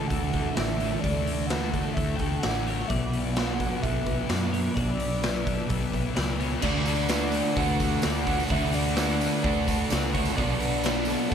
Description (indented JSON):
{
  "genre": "rock, shoegaze and dream pop",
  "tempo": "128 BPM",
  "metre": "4/4",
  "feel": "straight",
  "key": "D major",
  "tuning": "A4 = 437 Hz",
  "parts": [
    { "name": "soft octave-layered synth lead", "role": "melody", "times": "0.0-11.3 s", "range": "D5 to G5", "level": "-34 LUFS", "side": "right 1 dB", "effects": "chorus, phaser, analog delay" },
    { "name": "analog string pad", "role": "sustained chords", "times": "0.0-11.3 s", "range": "A4 to D6", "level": "-39 LUFS", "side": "right 1 dB", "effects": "ensemble chorus" },
    { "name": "twelve-string electric guitar", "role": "arpeggios", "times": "0.0-11.3 s", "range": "A4 to D5", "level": "-38 LUFS", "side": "right 1 dB", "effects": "wide subtle chorus, analog delay" },
    { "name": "crunchy overdriven guitar", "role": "riff", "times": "0.0-11.3 s", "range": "B2 to F#4", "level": "-31 LUFS", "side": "right 10 dB", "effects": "reverse reverb" },
    { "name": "thick fuzz guitar", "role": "riff", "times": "0.0-11.3 s", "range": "B2 to D4", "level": "-31 LUFS", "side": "left 10 dB", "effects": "distortion, lush chorus" },
    { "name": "vintage muted fingered electric bass", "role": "bass", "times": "0.1-11.3 s", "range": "A1 to F#2", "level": "-31 LUFS", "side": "equal", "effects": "none" },
    { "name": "raw garage drum kit", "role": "drums", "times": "0.1-11.3 s", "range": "crash cymbal, hi-hat, kick drum, snare drum", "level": "-30 LUFS", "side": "equal", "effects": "none" },
    { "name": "sludgy distorted guitar", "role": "riff", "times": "6.6-11.3 s", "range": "B2 to D4", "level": "-33 LUFS", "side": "left 1 dB", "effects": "overdrive" },
    { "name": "tambourine", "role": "percussion", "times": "6.6-11.3 s", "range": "none", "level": "-42 LUFS", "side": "right 8 dB", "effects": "none" }
  ],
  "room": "light reverb, small room ambience",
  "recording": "none",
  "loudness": "-24 LUFS",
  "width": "side -8 dB against mid",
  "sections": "0.0-6.6 A section; 6.6-11.3 B section",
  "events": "none",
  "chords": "0.0 Dsus2; 2.9 Bm; 6.6 D6; 10.4 Bm7"
}